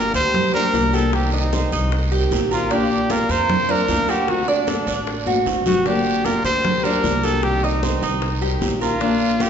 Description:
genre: latin, Cuban son and guajira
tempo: 152 BPM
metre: 4/4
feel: straight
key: unclear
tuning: A4 = 435 Hz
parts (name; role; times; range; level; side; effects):
- warm trumpet; melody; 0.0-9.5 s; D4 to C5; -22 LUFS; equal; none
- nylon-string guitar; accompaniment; 0.0-9.5 s; C3 to G4; -24 LUFS; left 4 dB; none
- Cuban tres; arpeggios; 0.0-9.5 s; D4 to Eb5; -25 LUFS; right 5 dB; none
- upright bass; bass; 0.0-9.5 s; G1 to F2; -25 LUFS; equal; none
- bongos; percussion; 0.1-9.5 s; none; -31 LUFS; left 5 dB; none
- congas; percussion; 0.1-9.5 s; none; -27 LUFS; right 1 dB; none
- guiro; percussion; 0.1-9.5 s; none; -32 LUFS; right 6 dB; none
room: wet recital hall reverb, RT60 1.8 s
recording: recorded in a church or concert hall, nothing above 7.8 kHz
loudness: -17 LUFS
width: side -8 dB against mid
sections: 0.0-9.5 A section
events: drum fill 5.3-5.9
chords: 0.0 Gm7; 1.1 Cm; 2.7 Bb; 4.3 D7; 5.9 Gm7; 7.4 Cm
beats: 0.34 0.74 | 1.13 1.53 1.92 2.31 | 2.71 3.10 3.50 3.89 | 4.29 4.68 5.07 5.47 | 5.86 6.25 6.65 7.04 | 7.44 7.83 8.22 8.62 | 9.01 9.40

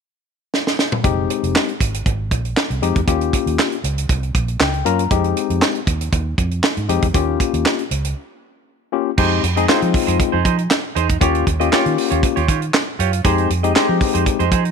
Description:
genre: early-eighties boogie funk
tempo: 118 BPM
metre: 4/4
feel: straight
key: F minor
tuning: A4 = 440 Hz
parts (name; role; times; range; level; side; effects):
- tight funk drum kit; drums; 0.5-14.7 s; crash cymbal, handclaps, hi-hat, kick drum, snare drum, toms; -19 LUFS; right 2 dB; none
- barky tine electric piano; accompaniment; 1.0-14.4 s; Ab3 to Bb5; -20 LUFS; left 15 dB; none
- vintage muted fingered electric bass; bass; 1.0-14.7 s; F1 to F3; -21 LUFS; right 1 dB; none
- semi-hollow electric guitar; riff; 9.2-14.7 s; Eb4 to Eb5; -22 LUFS; right 14 dB; wide subtle chorus
room: little or no reverb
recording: 1960s-style stereo with parts hard left and right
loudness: -16 LUFS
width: side -6 dB against mid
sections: 0.0-1.0 A section; 1.0-9.2 B section; 9.2-14.7 C section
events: drum fill 0.5-1.0; tine electric piano fill 4.3-5.1; break 8.2-9.2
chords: 0.0 N.C.; 1.0 Fm7; 3.1 Eb9; 5.1 Fm7; 7.1 Eb9; 9.2 Fm7; 11.2 Eb9; 13.2 Fm7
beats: 0.03 0.53 | 1.04 1.55 2.06 2.57 | 3.08 3.58 4.09 4.60 | 5.11 5.62 6.13 6.64 | 7.14 7.65 8.16 8.67 | 9.18 9.69 10.20 10.70 | 11.21 11.72 12.23 12.74 | 13.25 13.76 14.26

